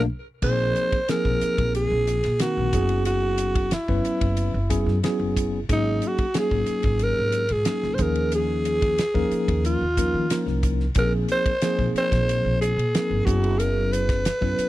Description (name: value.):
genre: electric jazz fusion.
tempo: 91 BPM.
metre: 4/4.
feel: straight.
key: unclear.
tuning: A4 = 444 Hz.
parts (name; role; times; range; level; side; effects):
tine electric piano; accompaniment; 0.0-14.7 s; Eb3 to Cb5; -26 LUFS; left 1 dB; medium stereo tremolo.
upright bass; bass; 0.0-14.6 s; Gb1 to Eb3; -25 LUFS; equal; none.
growling alto saxophone; melody; 0.4-14.7 s; Eb4 to C5; -24 LUFS; equal; none.
damped 70s drum kit; drums; 0.4-14.7 s; crash cymbal, hi-hat, kick drum, ride cymbal, snare drum; -26 LUFS; equal; none.
room: little or no reverb.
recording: dry, close 1970s-style studio recording.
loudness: -20 LUFS.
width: side -16 dB against mid.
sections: 0.4-14.7 A section.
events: drum fill 0.0-0.4; band accent 0.0-0.4.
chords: 0.4 Bb9sus4; 2.7 Gb9sus4; 5.7 Ab9sus4; 8.0 Eb9sus4; 11.0 Bb9sus4; 13.3 Gb9sus4.